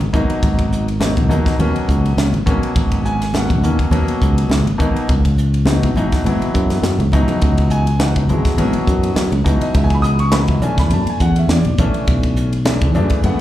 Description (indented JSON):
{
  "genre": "electric jazz fusion",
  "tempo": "103 BPM",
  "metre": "4/4",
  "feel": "swing 54% on 16ths",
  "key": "G# minor",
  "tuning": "A4 = 443 Hz",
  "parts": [
    { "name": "sustaining fretless electric bass", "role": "bass", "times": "0.0-13.4 s", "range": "G#1 to F#2", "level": "-16 LUFS", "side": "equal", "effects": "none" },
    { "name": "crisp fusion drum kit", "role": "drums", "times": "0.0-13.4 s", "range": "hi-hat, kick drum, ride cymbal, snare drum", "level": "-20 LUFS", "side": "equal", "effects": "none" },
    { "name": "warm concert grand piano", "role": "accompaniment", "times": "0.1-13.4 s", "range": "B2 to D#6", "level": "-20 LUFS", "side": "left 1 dB", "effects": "plate reverb, slapback echo" },
    { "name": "congas", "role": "percussion", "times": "0.1-13.4 s", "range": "none", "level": "-24 LUFS", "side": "left 2 dB", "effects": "none" }
  ],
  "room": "little or no reverb",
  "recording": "live gig heard through the venue's PA, club reverb",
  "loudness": "-14 LUFS",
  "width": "side -13 dB against mid",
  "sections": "0.0-13.4 A section",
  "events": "drum fill 6.7-7.4",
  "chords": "0.0 G#m11; 5.1 C#m11; 10.6 Bm11"
}